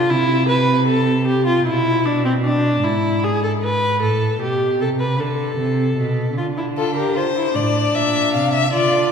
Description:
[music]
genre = classical, baroque-style fugue for string quartet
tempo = 51 BPM (dotted quarters)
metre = 12/8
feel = straight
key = D minor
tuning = A4 = 441 Hz
[part]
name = rich viola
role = accompaniment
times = 0.0-9.1 s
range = C4 to B4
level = -19 LUFS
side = left 1 dB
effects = none
[part]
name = rich cello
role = bass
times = 0.0-9.1 s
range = G#2 to D3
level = -20 LUFS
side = right 2 dB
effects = none
[part]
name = rich violin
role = second line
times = 6.8-9.1 s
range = A4 to F5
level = -18 LUFS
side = left 4 dB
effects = none
[sound]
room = wet concert hall reverb, RT60 1.9 s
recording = minimal, uncompressed stereo recording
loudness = -16 LUFS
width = side -6 dB against mid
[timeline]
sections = 0.0-6.4 A section; 6.4-9.1 B section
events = none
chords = 0.0 Am/C; 1.7 E7/B; 4.0 Am; 6.4 Dm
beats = 0.49 | 1.66 2.84 4.01 5.19 | 6.37 7.55 8.72

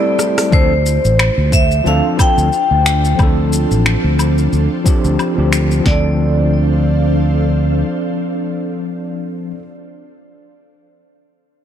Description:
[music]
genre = sunset chillout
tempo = 90 BPM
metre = 4/4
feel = swing 56% on 16ths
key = D minor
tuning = A4 = 440 Hz
[part]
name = vibraphone with medium hard mallets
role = melody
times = 0.0-9.6 s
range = C5 to G5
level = -19 LUFS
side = left 2 dB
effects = tape echo
[part]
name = overdriven tine electric piano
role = accompaniment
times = 0.0-9.6 s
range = F3 to A4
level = -20 LUFS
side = moving between left 5 dB and right 2 dB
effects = auto-pan, vintage 12-bit sampler grit, ping-pong delay
[part]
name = ethereal airy pad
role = sustained chords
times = 0.0-9.3 s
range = A3 to F5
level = -24 LUFS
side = right 2 dB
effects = ensemble chorus, built-in reverb, tremolo
[part]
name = deep house drum kit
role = drums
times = 0.2-5.8 s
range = finger snaps, hi-hat, rim click, shaker, woodblock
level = -20 LUFS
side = left 1 dB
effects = overdrive, small room ambience
[part]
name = mellow fretless electric bass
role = bass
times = 0.5-7.8 s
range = A1 to D2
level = -14 LUFS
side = equal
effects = analog chorus
[part]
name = deep house drum kit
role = drums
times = 0.5-6.0 s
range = kick drum, snare drum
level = -14 LUFS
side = equal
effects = overdrive, small room ambience
[sound]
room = light reverb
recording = none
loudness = -12 LUFS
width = side -9 dB against mid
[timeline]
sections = 0.5-5.9 A section; 5.9-8.5 B section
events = break 0.0-0.5; drum fill 0.2-0.5; filter sweep on fretless electric bass 0.5-5.9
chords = 0.0 Am7; 0.5 Dm7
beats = | 0.52 1.19 1.86 2.52 | 3.19 3.86 4.52 5.19 | 5.86 6.52 7.19 7.86

